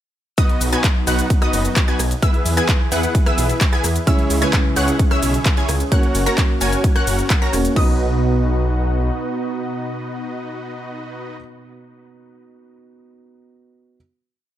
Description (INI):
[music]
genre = EDM, festival progressive house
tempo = 130 BPM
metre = 4/4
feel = straight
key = B major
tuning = A4 = 441 Hz
[part]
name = lush unison pad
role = sustained chords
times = 0.4-11.4 s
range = B2 to B4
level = -27 LUFS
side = equal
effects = chorus, sidechain pumping
[part]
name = wide unison pluck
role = arpeggios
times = 0.4-11.4 s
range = D#6 to A#6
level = -28 LUFS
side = equal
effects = analog chorus, sidechain pumping, dub echo
[part]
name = supersaw stab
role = riff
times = 0.4-11.4 s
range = B3 to A#5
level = -24 LUFS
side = equal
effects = cassette tape, sidechain pumping, dub echo
[part]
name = big-room dance drum kit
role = drums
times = 0.4-7.9 s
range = crash cymbal, handclaps, hi-hat, ride cymbal, rim click, shaker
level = -24 LUFS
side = equal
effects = overdrive, studio ambience
[part]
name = electronic kick drum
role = drums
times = 0.4-7.9 s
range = none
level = -16 LUFS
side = equal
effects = overdrive, studio ambience
[part]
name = wide detuned saw bass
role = bass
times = 0.6-9.1 s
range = E1 to E2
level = -20 LUFS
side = equal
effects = chorus, sidechain pumping
[part]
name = felt-muted upright piano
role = accompaniment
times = 4.1-14.0 s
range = C#3 to C#5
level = -25 LUFS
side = right 2 dB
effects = sidechain pumping, dub echo
[sound]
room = digital ambience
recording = none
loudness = -16 LUFS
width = side -12 dB against mid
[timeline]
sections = 0.4-7.8 drop; 7.8-11.5 final chord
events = drop 0.4-7.8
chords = 0.4 B; 2.2 E; 4.1 C#m; 5.9 F#; 7.8 B